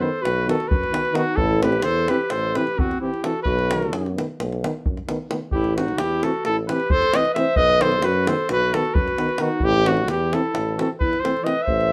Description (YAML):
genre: balkan folk, Balkan brass band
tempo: 262 BPM (eighths)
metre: 9/8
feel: straight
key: A dorian sharp4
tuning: A4 = 440 Hz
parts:
  - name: warm cornet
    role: melody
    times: 0.0-11.9 s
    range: F#4 to E5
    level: -24 LUFS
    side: equal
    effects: none
  - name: warm clarinet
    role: second line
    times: 0.0-11.9 s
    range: C4 to C5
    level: -29 LUFS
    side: equal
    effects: none
  - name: warm euphonium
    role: accompaniment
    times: 0.0-11.5 s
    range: B3 to C4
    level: -31 LUFS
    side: equal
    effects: none
  - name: warm trombone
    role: accompaniment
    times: 0.0-11.5 s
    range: D#3 to E3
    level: -32 LUFS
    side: equal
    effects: none
  - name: warm tuba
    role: bass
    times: 0.0-11.9 s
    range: A1 to F#2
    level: -28 LUFS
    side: equal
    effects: none
  - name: davul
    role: percussion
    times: 0.3-11.9 s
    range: none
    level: -28 LUFS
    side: equal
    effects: none
room: moderate studio reverb, RT60 0.6 s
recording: none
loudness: -21 LUFS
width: mono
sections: 0.0-11.9 A section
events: none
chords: 0.0 B; 1.4 Am; 3.4 B; 5.5 Am; 7.6 B; 9.6 Am